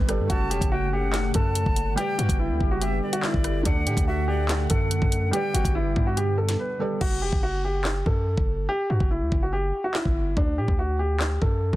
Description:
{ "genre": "hip hop, drill", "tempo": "143 BPM", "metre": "4/4", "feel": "half-time", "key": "F# phrygian", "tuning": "A4 = 445 Hz", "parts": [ { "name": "dark grand piano", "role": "melody", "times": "0.0-11.8 s", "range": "D4 to B4", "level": "-28 LUFS", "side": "equal", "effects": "low-pass filter" }, { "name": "felt-muted upright piano", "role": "accompaniment", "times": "0.0-7.0 s", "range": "D3 to D5", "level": "-34 LUFS", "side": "right 3 dB", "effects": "low-pass filter" }, { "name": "dark analog pad", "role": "sustained chords", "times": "0.0-7.0 s", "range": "C#3 to F#5", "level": "-32 LUFS", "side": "equal", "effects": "chorus, phaser" }, { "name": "hard-hitting 808-style bass", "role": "bass", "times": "0.0-11.8 s", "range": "E1 to A2", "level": "-26 LUFS", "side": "equal", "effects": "none" }, { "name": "drill drum kit", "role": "drums", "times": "0.1-11.8 s", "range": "crash cymbal, handclaps, hi-hat, kick drum, rim click, snare drum", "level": "-25 LUFS", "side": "equal", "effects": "none" }, { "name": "silver concert flute", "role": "second line", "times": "0.3-5.7 s", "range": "D5 to A5", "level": "-33 LUFS", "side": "left 2 dB", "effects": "ping-pong delay" } ], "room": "small room ambience", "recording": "dense, heavily limited modern master", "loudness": "-22 LUFS", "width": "side -16 dB against mid", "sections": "0.0-7.0 A section; 7.0-11.8 B section", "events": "break 6.6-7.0; hi-hats muted 7.0-11.8", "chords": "0.3 F#m; 2.0 G; 3.7 D; 5.3 G; 7.0 F#m; 8.7 G5; 10.4 D", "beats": "| 0.30 0.72 1.14 1.56 | 1.98 2.40 2.81 3.23 | 3.65 4.07 4.49 4.91 | 5.33 5.75 6.17 6.59 | 7.01 7.43 7.85 8.27 | 8.69 9.11 9.53 9.95 | 10.37 10.79 11.21 11.63" }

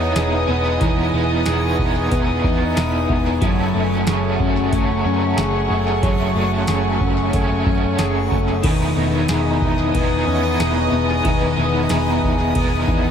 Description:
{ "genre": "dream pop", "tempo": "92 BPM", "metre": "4/4", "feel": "straight", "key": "unclear", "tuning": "A4 = 440 Hz", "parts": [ { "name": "raw garage guitar", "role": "accompaniment", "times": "0.0-13.1 s", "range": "F#2 to G#4", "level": "-23 LUFS", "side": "right 2 dB", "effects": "overdrive, tremolo, ensemble chorus" }, { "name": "warm studio string section", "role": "sustained chords", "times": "0.0-13.1 s", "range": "A3 to D#6", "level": "-25 LUFS", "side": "equal", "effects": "none" }, { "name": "clean electric guitar", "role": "arpeggios", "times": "0.0-13.1 s", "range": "D#3 to G#4", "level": "-21 LUFS", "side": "left 2 dB", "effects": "wide subtle chorus, tape echo" }, { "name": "vintage muted picked electric bass", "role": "bass", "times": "0.0-13.1 s", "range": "E1 to F#2", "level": "-22 LUFS", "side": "equal", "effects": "none" }, { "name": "booming analog drum machine", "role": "drums", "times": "0.2-13.1 s", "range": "crash cymbal, hi-hat, kick drum, ride cymbal, snare drum, tambourine", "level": "-23 LUFS", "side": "equal", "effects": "tape echo" }, { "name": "backwards swelling texture", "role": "texture", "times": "0.2-12.5 s", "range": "B5 to F#6", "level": "-35 LUFS", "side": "right 2 dB", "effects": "built-in reverb, tape echo" } ], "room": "moderate spring reverb, RT60 1.9 s, digital ambience", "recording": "echo-heavy mix", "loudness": "-16 LUFS", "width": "side -8 dB against mid", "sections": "0.0-8.6 A section; 8.6-13.1 B section", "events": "none", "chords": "0.0 Emaj7; 3.4 F#madd9; 8.6 Emaj7", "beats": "0.16 | 0.81 1.46 2.12 2.77 | 3.42 4.07 4.72 5.38 | 6.03 6.68 7.33 7.99 | 8.64 9.29 9.94 10.59 | 11.25 11.90 12.55" }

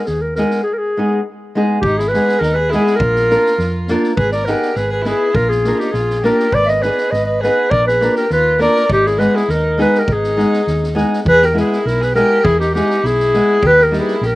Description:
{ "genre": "balkan folk, Balkan wedding band", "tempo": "102 BPM", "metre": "2/4", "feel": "straight", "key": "Ab hungarian minor", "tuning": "A4 = 440 Hz", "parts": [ { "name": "mellow clarinet", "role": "melody", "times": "0.0-14.4 s", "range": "G4 to Fb5", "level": "-15 LUFS", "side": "equal", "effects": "slapback echo" }, { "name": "flamenco guitar", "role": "accompaniment", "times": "0.0-14.2 s", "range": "G3 to Cb5", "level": "-18 LUFS", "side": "equal", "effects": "none" }, { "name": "hollow-body short-scale fingered electric bass", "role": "bass", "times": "0.1-14.4 s", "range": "Ab1 to F2", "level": "-20 LUFS", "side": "equal", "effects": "none" }, { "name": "street-band drum kit", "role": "percussion", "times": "0.1-14.3 s", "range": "kick drum, snare drum", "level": "-26 LUFS", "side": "equal", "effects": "none" }, { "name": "rich violin", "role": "second line", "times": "1.9-14.4 s", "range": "Eb4 to D5", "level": "-24 LUFS", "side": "right 2 dB", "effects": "slapback echo" } ], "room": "little or no reverb", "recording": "recorded outdoors, with no room sound", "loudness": "-12 LUFS", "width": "side -18 dB against mid", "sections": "0.0-1.8 A section; 1.8-11.3 A section; 11.3-14.4 B section", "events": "none", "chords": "0.0 Abm; 3.0 Bb; 4.2 Abm; 5.4 Bb; 6.5 Abm; 7.7 Bb; 8.9 Abm; 11.3 E; 13.6 Eb", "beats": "0.09 | 0.67 1.26 | 1.84 2.43 | 3.02 3.60 | 4.19 4.78 | 5.37 5.96 | 6.54 7.13 | 7.72 8.31 | 8.90 9.50 | 10.09 10.68 | 11.27 11.86 | 12.46 13.05 | 13.64 14.23" }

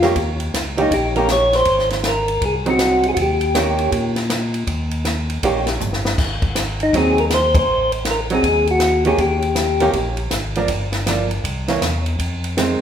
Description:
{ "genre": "soul jazz organ trio", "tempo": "160 BPM", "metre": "4/4", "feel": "swing 64% on 8ths", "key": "Eb mixolydian", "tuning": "A4 = 439 Hz", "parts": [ { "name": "percussive tonewheel organ", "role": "melody", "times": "0.0-3.9, 6.8-9.9 s", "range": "Eb4 to Db5", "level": "-17 LUFS", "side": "left 1 dB", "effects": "slow rotary speaker" }, { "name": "archtop guitar, miked and amplified", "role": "accompaniment", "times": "0.0-12.8 s", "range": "Eb3 to G4", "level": "-21 LUFS", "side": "right 3 dB", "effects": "none" }, { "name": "tonewheel organ", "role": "bass", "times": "0.0-12.8 s", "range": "G1 to Bb2", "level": "-23 LUFS", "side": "equal", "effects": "overdrive, slow rotary speaker" }, { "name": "compact cocktail drum kit", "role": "drums", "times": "0.0-12.7 s", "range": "crash cymbal, hi-hat, kick drum, ride cymbal, snare drum, toms", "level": "-23 LUFS", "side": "equal", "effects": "none" } ], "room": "wet recital hall reverb, RT60 1.3 s", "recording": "recorded in a church or concert hall", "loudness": "-16 LUFS", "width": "side -8 dB against mid", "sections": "0.2-12.8 A section", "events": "drum fill 5.8-6.2; band accent 7.5", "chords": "0.2 Eb7; 1.7 Ab7; 3.2 Eb7; 6.2 Ab7; 7.7 Adim7; 9.2 Eb; 10.7 Gm7; 11.4 C7b9; 12.2 Fm7", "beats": "| 0.16 0.54 0.91 1.29 | 1.67 2.04 2.42 2.80 | 3.17 3.55 3.92 4.30 | 4.68 5.05 5.43 5.80 | 6.18 6.56 6.93 7.31 | 7.68 8.06 8.44 8.81 | 9.19 9.56 9.94 10.31 | 10.69 11.06 11.44 11.81 | 12.19 12.56" }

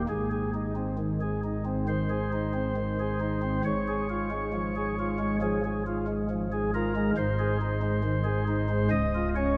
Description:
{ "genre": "classical, chorale-style piece for pipe organ", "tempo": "68 BPM", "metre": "4/4", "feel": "rubato", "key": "Ab major", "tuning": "A4 = 440 Hz", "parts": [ { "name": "pipe organ, flutes", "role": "solo", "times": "0.0-9.6 s", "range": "Db1 to Eb5", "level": "-29 LUFS", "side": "equal", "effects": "none" } ], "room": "wet church reverb, RT60 3.9 s", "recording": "none", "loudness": "-29 LUFS", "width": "mono", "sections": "0.0-9.6 A section", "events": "none", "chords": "0.1 Ab; 3.6 Db/Ab; 7.2 Ab; 8.9 Db", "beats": "| 0.08 0.98 1.88 2.77 | 3.65 4.53 5.41 6.28 | 7.16 8.03 8.92" }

